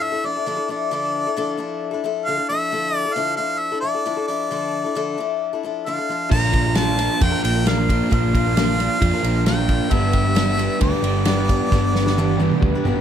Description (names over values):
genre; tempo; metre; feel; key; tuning
folk rock and heartland rock; 133 BPM; 4/4; straight; D minor; A4 = 436 Hz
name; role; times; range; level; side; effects
warm harmonica; melody; 0.0-13.0 s; D5 to Bb5; -24 LUFS; right 1 dB; none
picked steel-string acoustic guitar; accompaniment; 0.0-13.0 s; G2 to B4; -25 LUFS; left 6 dB; none
crunchy overdriven guitar; riff; 6.3-13.0 s; G2 to G4; -23 LUFS; right 2 dB; none
hollow-body short-scale picked electric bass; bass; 6.3-13.0 s; G1 to F2; -22 LUFS; equal; none
unplugged drum kit; drums; 6.3-13.0 s; crash cymbal, kick drum, ride cymbal, snare drum, toms; -21 LUFS; right 1 dB; none
room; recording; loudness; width
studio ambience; none; -18 LUFS; side -9 dB against mid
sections
0.0-13.0 A section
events
drum fill 11.7-13.0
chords
0.0 Dmadd9; 6.3 Bb; 9.9 G